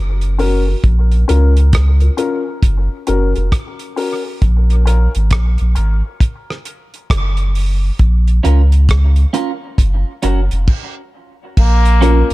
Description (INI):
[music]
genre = dub reggae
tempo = 67 BPM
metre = 4/4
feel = swing 63% on 16ths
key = Bb minor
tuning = A4 = 441 Hz
[part]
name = warm sub bass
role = bass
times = 0.0-12.3 s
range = F1 to Db2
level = -12 LUFS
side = equal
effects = none
[part]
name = damped 70s drum kit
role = drums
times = 0.2-12.3 s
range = crash cymbal, hi-hat, kick drum, rim click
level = -16 LUFS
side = equal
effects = none
[part]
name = dark upright piano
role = stabs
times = 0.4-12.3 s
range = Db4 to Bb4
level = -21 LUFS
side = left 4 dB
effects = high-pass filter, dub echo
[part]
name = clean electric guitar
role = accompaniment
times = 8.4-12.2 s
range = Db4 to Bb4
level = -21 LUFS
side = right 5 dB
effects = wide subtle chorus, dub echo
[part]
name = bright trombone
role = melody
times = 11.6-12.3 s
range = Bb3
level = -18 LUFS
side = left 2 dB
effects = none
[sound]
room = small room ambience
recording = dark, warm production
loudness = -12 LUFS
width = side -19 dB against mid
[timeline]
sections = 0.0-11.6 A section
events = break 0.0-8.0; filter sweep on upright piano 0.8-11.6; stop 10.7-11.6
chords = 0.0 Gb; 0.8 Bbm; 2.6 Gb; 4.4 Bbm; 6.2 Gb; 8.0 Bbm; 9.8 Gb; 11.6 Bbm